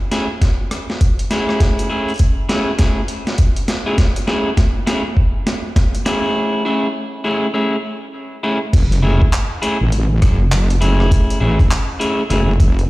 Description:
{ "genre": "glitch hop", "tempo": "101 BPM", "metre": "4/4", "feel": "swing 62% on 16ths", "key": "F# minor", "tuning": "A4 = 435 Hz", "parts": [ { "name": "electric guitar at the edge of break-up", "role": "stabs", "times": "0.1-12.5 s", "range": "A3 to G#4", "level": "-20 LUFS", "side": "equal", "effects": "vintage 12-bit sampler grit, sidechain pumping, dub echo" }, { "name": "boom bap sampler-style drum kit", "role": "drums", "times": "0.1-12.9 s", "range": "crash cymbal, handclaps, hi-hat, rim click, snare drum", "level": "-24 LUFS", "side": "equal", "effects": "none" }, { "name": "electronic kick drum", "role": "drums", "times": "0.4-12.7 s", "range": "none", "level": "-13 LUFS", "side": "equal", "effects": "none" }, { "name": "wobble bass", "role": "bass", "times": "8.7-12.9 s", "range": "F#1 to A1", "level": "-14 LUFS", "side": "equal", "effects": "chorus" } ], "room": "light reverb, digital ambience", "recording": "played on a big sound system in a bare room, large studio reverb", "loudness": "-14 LUFS", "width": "side -19 dB against mid", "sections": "0.0-8.7 A section; 8.7-12.9 B section", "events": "build-up 0.0-8.7; drum fill 0.0-6.4; break 6.4-8.7; drop 8.7-12.9", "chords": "0.0 Amaj7; 8.7 F#m9", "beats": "0.42 1.01 | 1.61 2.20 2.79 3.39 | 3.98 4.58 5.17 5.76 | 6.36 6.95 7.55 8.14 | 8.73 9.33 9.92 10.52 | 11.11 11.71 12.30" }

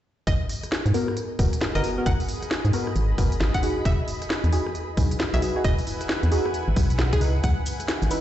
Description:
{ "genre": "UK garage, two-step garage", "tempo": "134 BPM", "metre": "4/4", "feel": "swing 62% on 16ths", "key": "unclear", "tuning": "A4 = 440 Hz", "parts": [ { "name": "string-like resonator pluck", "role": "melody", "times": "0.3-7.6 s", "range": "G#4 to F#5", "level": "-33 LUFS", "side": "equal", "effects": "chorus, ping-pong delay" }, { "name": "organ-like FM bass", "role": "bass", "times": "0.3-8.1 s", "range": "D#1 to G#2", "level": "-22 LUFS", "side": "equal", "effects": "none" }, { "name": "electronic kick drum", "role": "drums", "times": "0.3-7.5 s", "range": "none", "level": "-26 LUFS", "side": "equal", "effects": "none" }, { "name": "garage drum kit", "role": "drums", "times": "0.3-8.2 s", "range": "cabasa, hi-hat, rim click, snare drum", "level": "-30 LUFS", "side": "equal", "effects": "none" }, { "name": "granular cloud pad", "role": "texture", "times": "1.2-8.2 s", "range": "C#4 to B5", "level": "-34 LUFS", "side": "left 1 dB", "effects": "built-in reverb, sidechain pumping" }, { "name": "deep mellow chord stab", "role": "stabs", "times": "0.9-8.2 s", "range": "B3 to B4", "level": "-29 LUFS", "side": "equal", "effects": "chorus, tape echo" } ], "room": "light reverb", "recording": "played on a big sound system in a bare room, large studio reverb, nothing above 8.0 kHz", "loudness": "-21 LUFS", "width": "side -12 dB against mid", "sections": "0.3-8.2 A section", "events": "none", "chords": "0.3 G#m7; 3.9 Emaj7; 7.2 C#m7", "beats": "| 0.27 0.72 1.17 1.61 | 2.06 2.51 2.96 3.40 | 3.85 4.30 4.75 5.20 | 5.64 6.09 6.54 6.99 | 7.43 7.88" }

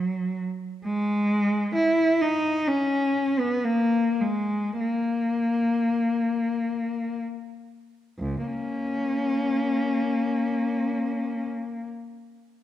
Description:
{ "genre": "classical, free, expressive piece for unaccompanied cello", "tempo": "27-74 BPM", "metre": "3/4", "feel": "rubato", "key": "C# dorian", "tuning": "A4 = 439 Hz", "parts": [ { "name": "rich cello", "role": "solo", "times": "0.0-11.8 s", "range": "C#2 to E4", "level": "-23 LUFS", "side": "left 1 dB", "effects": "none" } ], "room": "moderate scoring stage reverb, RT60 1.8 s", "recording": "none", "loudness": "-23 LUFS", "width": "side -12 dB against mid", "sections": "0.0-8.2 A section; 8.2-12.6 B section", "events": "slowing down 0.0-8.2", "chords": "none", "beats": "0.01 | 0.84 1.73 2.65 | 3.63 4.78 6.26 | 8.19 9.84 11.59" }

